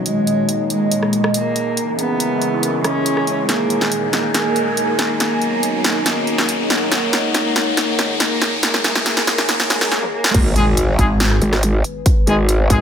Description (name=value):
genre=heavy wobble dubstep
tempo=140 BPM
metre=4/4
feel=half-time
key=G# minor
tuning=A4 = 440 Hz
part: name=lush unison pad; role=sustained chords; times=0.0-12.8 s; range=A#2 to F#4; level=-26 LUFS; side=left 1 dB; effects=chorus, sidechain pumping
part: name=riser, swell and impact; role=sound effects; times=0.0-12.1 s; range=none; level=-25 LUFS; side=left 1 dB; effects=none
part: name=deep dark ambient pad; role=texture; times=0.0-12.8 s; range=D#4 to B5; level=-22 LUFS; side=right 1 dB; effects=chorus, built-in reverb, sidechain pumping
part: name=dark cello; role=melody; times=0.1-10.3 s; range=G#3 to C#4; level=-22 LUFS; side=right 1 dB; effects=digital delay
part: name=big-room dance drum kit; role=drums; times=0.1-12.8 s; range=crash cymbal, hi-hat, rim click, snare drum, toms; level=-19 LUFS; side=equal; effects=studio reverb
part: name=growl bass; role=bass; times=10.3-12.7 s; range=G#1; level=-15 LUFS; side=equal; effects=chorus, overdrive
part: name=electronic kick drum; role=drums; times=10.3-12.8 s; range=none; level=-16 LUFS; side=equal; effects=studio reverb
part: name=warm brass ensemble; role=stabs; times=10.6-12.8 s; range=G#3 to G#4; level=-21 LUFS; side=left 2 dB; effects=digital delay
part: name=pulsing pluck wobble bass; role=bass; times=11.0-12.8 s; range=G#1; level=-16 LUFS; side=equal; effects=chorus, overdrive
room=moderate digital room reverb, RT60 1.1 s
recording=high-pass filter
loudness=-15 LUFS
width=side -8 dB against mid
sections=0.0-10.3 A section; 10.3-12.8 B section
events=build-up 0.0-10.3; riser 0.0-9.9; filter sweep 0.0-10.3; drum fill 3.5-9.9, 9.9-10.3; swell 9.5-10.3; drop 10.3-12.8; impact 10.3-12.1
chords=0.1 G#sus2; 1.8 C#m; 3.5 G#sus2; 5.2 Badd9; 6.9 G#sus2; 8.6 C#m; 9.5 D#m; 10.3 G#m7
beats=| 0.06 0.49 0.92 1.34 | 1.77 2.20 2.63 3.06 | 3.49 3.92 4.34 4.77 | 5.20 5.63 6.06 6.49 | 6.92 7.34 7.77 8.20 | 8.63 9.06 9.49 9.92 | 10.34 10.77 11.20 11.63 | 12.06 12.49